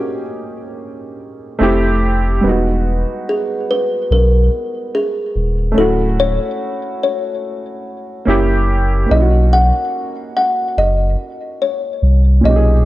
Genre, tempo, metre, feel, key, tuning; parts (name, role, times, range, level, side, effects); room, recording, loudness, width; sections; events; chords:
lo-fi hip hop; 72 BPM; 4/4; swing 57% on 16ths; B major; A4 = 440 Hz
kalimba; melody; 0.0-12.9 s; F#4 to F#5; -18 LUFS; left 2 dB; low-pass filter
warm upright piano; accompaniment; 0.0-12.9 s; A#2 to G#4; -19 LUFS; right 2 dB; low-pass filter
saturated sub bass; bass; 1.6-12.9 s; D1 to C2; -14 LUFS; equal
light reverb, studio ambience; dark, warm production; -13 LUFS; side -16 dB against mid
0.0-12.9 A section
0.0 Bmaj9 (rootless); 1.6 Fmaj9; 2.4 Emaj9; 5.8 Dmaj9; 8.3 F#7b9; 9.1 Bmaj9